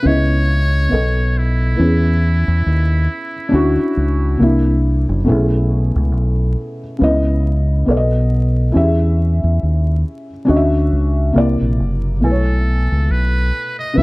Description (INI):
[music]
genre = lo-fi hip hop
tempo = 69 BPM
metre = 4/4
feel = swing 57% on 16ths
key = unclear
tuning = A4 = 440 Hz
[part]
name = trumpet with metal mute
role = melody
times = 0.0-4.8, 12.2-14.0 s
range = E4 to E5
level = -23 LUFS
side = right 1 dB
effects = low-pass filter
[part]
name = felt-muted upright piano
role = accompaniment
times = 0.0-14.0 s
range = B2 to G#5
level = -18 LUFS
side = equal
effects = low-pass filter
[part]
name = deep dub fingered electric bass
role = bass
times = 0.1-14.0 s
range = F#1 to E2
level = -15 LUFS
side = equal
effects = none
[sound]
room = light reverb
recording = dark, warm production, vinyl crackle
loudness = -14 LUFS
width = side -23 dB against mid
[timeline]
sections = 0.0-14.0 A section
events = none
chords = 0.0 C#m9; 0.9 B7; 1.8 E6; 3.5 Dmaj9; 4.4 C9; 5.3 B13sus4; 7.0 C#m9; 7.9 B7; 8.7 E6; 10.5 Dmaj9; 11.3 C9; 12.2 B13sus4